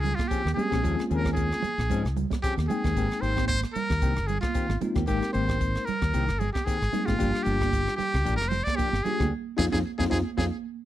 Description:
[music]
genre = electric jazz fusion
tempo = 113 BPM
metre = 4/4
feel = swing 54% on 16ths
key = unclear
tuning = A4 = 440 Hz
[part]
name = trumpet with metal mute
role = melody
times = 0.0-10.4 s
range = F4 to D5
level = -30 LUFS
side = equal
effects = slapback echo
[part]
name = mellow electric guitar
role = stabs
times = 0.0-10.5 s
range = Eb3 to Ab4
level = -34 LUFS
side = left 7 dB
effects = wide subtle chorus
[part]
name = mellow fretless electric bass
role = bass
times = 0.0-10.5 s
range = F1 to Ab2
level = -28 LUFS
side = equal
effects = lush chorus
[part]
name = congas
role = percussion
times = 0.0-10.5 s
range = none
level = -34 LUFS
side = right 11 dB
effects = none
[part]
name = crisp fusion drum kit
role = drums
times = 0.1-10.5 s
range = hi-hat, kick drum, rim click, snare drum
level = -31 LUFS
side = equal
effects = none
[part]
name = bell-like tine electric piano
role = accompaniment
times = 0.6-10.5 s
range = G3 to G5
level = -30 LUFS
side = left 3 dB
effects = medium stereo tremolo
[sound]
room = little or no reverb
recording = dry, close 1970s-style studio recording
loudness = -24 LUFS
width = side -13 dB against mid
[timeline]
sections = 0.0-10.8 A section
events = band accent 9.3-10.8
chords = 0.0 Eb13sus4; 2.7 Abmaj9; 7.2 Gm7; 9.3 Fm7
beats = 0.31 | 0.84 1.37 1.90 2.43 | 2.96 3.49 4.02 4.55 | 5.08 5.61 6.14 6.67 | 7.20 7.73 8.26 8.79 | 9.32 9.85 10.38

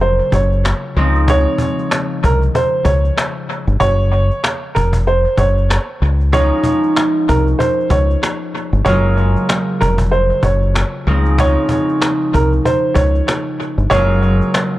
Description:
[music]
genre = hip hop, boom-bap hip-hop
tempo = 95 BPM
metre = 4/4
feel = swing 58% on 16ths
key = Gb lydian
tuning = A4 = 440 Hz
[part]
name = dark upright piano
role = melody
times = 0.0-14.5 s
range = Bb4 to Db5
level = -18 LUFS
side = right 2 dB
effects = high-pass filter, low-pass filter, analog delay
[part]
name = concert harp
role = accompaniment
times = 0.0-14.8 s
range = Db3 to F4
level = -19 LUFS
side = equal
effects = high-pass filter, low-pass filter, analog delay
[part]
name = deep dub fingered electric bass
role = bass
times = 0.0-14.4 s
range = F1 to Db2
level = -14 LUFS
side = equal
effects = none
[part]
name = cajon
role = drums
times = 0.0-14.7 s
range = none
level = -21 LUFS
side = equal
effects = analog delay
[sound]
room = light reverb, small room ambience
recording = echo-heavy mix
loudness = -13 LUFS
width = side -16 dB against mid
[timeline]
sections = 0.0-14.8 A section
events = none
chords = 0.0 Gbmaj9; 1.0 Dbmaj7; 3.8 Gb5; 6.0 Dbadd9; 8.9 Gbmaj9; 11.1 Dbmaj9; 13.9 Gbmaj9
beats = 0.01 0.65 | 1.28 1.91 2.54 3.17 | 3.80 4.44 5.07 5.70 | 6.33 6.96 7.59 8.22 | 8.86 9.49 10.12 10.75 | 11.38 12.02 12.65 13.28 | 13.91 14.54

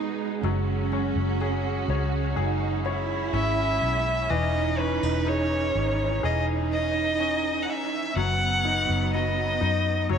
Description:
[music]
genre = pop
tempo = 62 BPM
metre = 4/4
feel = straight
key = B major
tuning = A4 = 440 Hz
[part]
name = dark studio cello section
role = second line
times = 0.0-10.2 s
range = B3 to E4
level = -31 LUFS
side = right 8 dB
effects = tape echo
[part]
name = bright upright piano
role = accompaniment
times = 0.0-10.2 s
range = E3 to C#5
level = -32 LUFS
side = left 12 dB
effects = none
[part]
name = warm symphonic string section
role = sustained chords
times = 0.0-10.2 s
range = E3 to F#4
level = -34 LUFS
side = right 10 dB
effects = none
[part]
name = fingerpicked steel-string acoustic guitar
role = arpeggios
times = 0.0-10.2 s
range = F#2 to G#4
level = -37 LUFS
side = right 8 dB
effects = none
[part]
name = vintage muted fingered electric bass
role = bass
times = 0.4-10.2 s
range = E1 to F#2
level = -28 LUFS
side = left 1 dB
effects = none
[part]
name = rich violin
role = melody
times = 3.3-10.2 s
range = B4 to F#5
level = -26 LUFS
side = left 1 dB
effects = none
[sound]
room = moderate echo chamber reverb, RT60 2.0 s, small room ambience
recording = 1960s-style stereo with parts hard left and right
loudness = -23 LUFS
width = side -7 dB against mid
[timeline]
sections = 0.0-10.2 A section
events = none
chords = 0.4 F#sus2; 4.3 C#madd9/E; 8.2 B/F#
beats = | 0.43 1.40 2.37 3.33 | 4.30 5.27 6.24 7.20 | 8.17 9.14 10.11

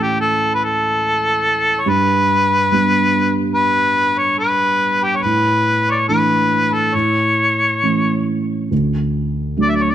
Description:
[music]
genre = celtic folk, Celtic slow air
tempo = 67-75 BPM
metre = 4/4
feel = rubato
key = unclear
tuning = A4 = 438 Hz
[part]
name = mellow harmonica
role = melody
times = 0.0-9.9 s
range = G4 to E5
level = -15 LUFS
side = left 1 dB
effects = none
[part]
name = felt-muted upright piano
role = accompaniment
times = 0.0-9.9 s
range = D2 to D4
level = -19 LUFS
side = right 2 dB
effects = none
[sound]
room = light reverb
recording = close, detailed microphones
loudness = -14 LUFS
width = side -11 dB against mid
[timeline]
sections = 0.0-9.9 A section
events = none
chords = 0.0 A; 1.9 G; 5.2 Asus4; 6.9 A; 8.7 D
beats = 0.23 1.04 | 1.87 2.70 3.55 4.38 | 5.23 6.08 6.94 7.83 | 8.72 9.59

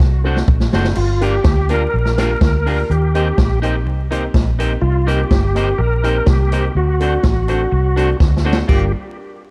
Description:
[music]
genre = ska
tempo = 124 BPM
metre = 4/4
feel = straight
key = G minor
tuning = A4 = 440 Hz
[part]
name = vintage muted fingered electric bass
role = bass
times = 0.0-8.9 s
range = F#1 to Eb2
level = -20 LUFS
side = equal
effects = none
[part]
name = swinging big-band drum kit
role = drums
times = 0.0-8.8 s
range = crash cymbal, hi-hat, kick drum, snare drum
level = -18 LUFS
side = equal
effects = none
[part]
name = warm upright piano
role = stabs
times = 0.2-8.9 s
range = G3 to G4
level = -28 LUFS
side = equal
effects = tape echo
[part]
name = electric guitar at the edge of break-up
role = accompaniment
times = 0.3-8.8 s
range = D4 to D5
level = -28 LUFS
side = equal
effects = none
[part]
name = bright tonewheel organ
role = melody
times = 1.0-8.9 s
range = F4 to Bb4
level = -24 LUFS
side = equal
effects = overdrive, chorus vibrato, fast rotary speaker, tape echo
[sound]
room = small room ambience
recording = vinyl crackle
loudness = -16 LUFS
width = mono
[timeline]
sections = 1.0-8.7 A section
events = drum fill 0.0-1.0, 8.2-8.7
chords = 0.0 D7; 1.0 Gm7; 2.9 Eb6; 4.8 Cm7; 6.8 D7; 8.7 Gm7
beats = 0.00 0.48 | 0.97 1.45 1.93 2.41 | 2.90 3.38 3.86 4.34 | 4.83 5.31 5.79 6.27 | 6.76 7.24 7.72 8.21 | 8.69

